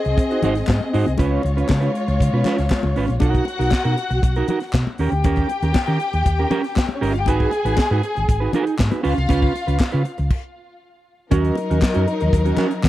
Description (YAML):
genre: disco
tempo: 118 BPM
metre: 4/4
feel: straight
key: Eb minor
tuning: A4 = 443 Hz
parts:
  - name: dark studio string section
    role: second line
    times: 0.0-12.9 s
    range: Gb3 to Ab5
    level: -24 LUFS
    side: left 2 dB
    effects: tape echo
  - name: mellow electric guitar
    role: accompaniment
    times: 0.0-12.7 s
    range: Db4 to C5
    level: -23 LUFS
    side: right 5 dB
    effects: none
  - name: tight funk drum kit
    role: drums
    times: 0.0-12.9 s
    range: crash cymbal, hi-hat, kick drum, snare drum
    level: -20 LUFS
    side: equal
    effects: none
  - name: hollow-body short-scale fingered electric bass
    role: bass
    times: 0.1-12.9 s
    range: G1 to Eb3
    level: -20 LUFS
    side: equal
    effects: none
  - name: congas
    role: percussion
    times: 0.4-12.9 s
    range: none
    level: -27 LUFS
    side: left 5 dB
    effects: none
  - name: group handclap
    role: percussion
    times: 0.7-12.9 s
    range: none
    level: -32 LUFS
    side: left 2 dB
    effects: none
room: studio reverb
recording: dry, close 1970s-style studio recording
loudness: -17 LUFS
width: side -14 dB against mid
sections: 0.0-3.2 A section; 3.2-11.3 B section; 11.3-12.9 C section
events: stop 10.3-11.3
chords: 0.0 Ab7; 1.2 Db7; 3.2 Bmaj7; 5.0 Eb7; 7.3 Abm7; 9.0 Db7; 11.3 Ebm7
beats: 0.18 0.69 | 1.20 1.70 2.21 2.72 | 3.22 3.73 4.24 4.74 | 5.25 5.76 6.26 6.77 | 7.28 7.78 8.29 8.79 | 9.30 9.81 10.31 10.82 | 11.33 11.83 12.34 12.85